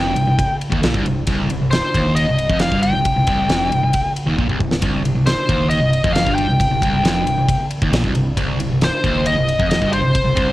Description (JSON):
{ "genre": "hard rock", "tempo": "135 BPM", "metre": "4/4", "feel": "straight", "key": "C minor", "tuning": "A4 = 440 Hz", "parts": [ { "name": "biting lead guitar", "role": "melody", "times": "0.0-10.5 s", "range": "C5 to G5", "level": "-20 LUFS", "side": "left 1 dB", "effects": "overdrive" }, { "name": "sludgy distorted guitar", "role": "riff", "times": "0.0-10.5 s", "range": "C2 to Bb2", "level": "-18 LUFS", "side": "equal", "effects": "overdrive, cassette tape" }, { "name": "sub bass with octave", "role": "bass", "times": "0.0-10.5 s", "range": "C1 to Bb1", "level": "-26 LUFS", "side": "equal", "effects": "none" }, { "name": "huge arena drum kit", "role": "drums", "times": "0.2-10.5 s", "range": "kick drum, ride cymbal, snare drum", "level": "-20 LUFS", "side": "equal", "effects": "cassette tape" } ], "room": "light reverb", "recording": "home recording on cassette", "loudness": "-15 LUFS", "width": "side -16 dB against mid", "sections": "0.0-10.5 A section", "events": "drum fill 4.4-4.8", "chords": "0.0 Cm" }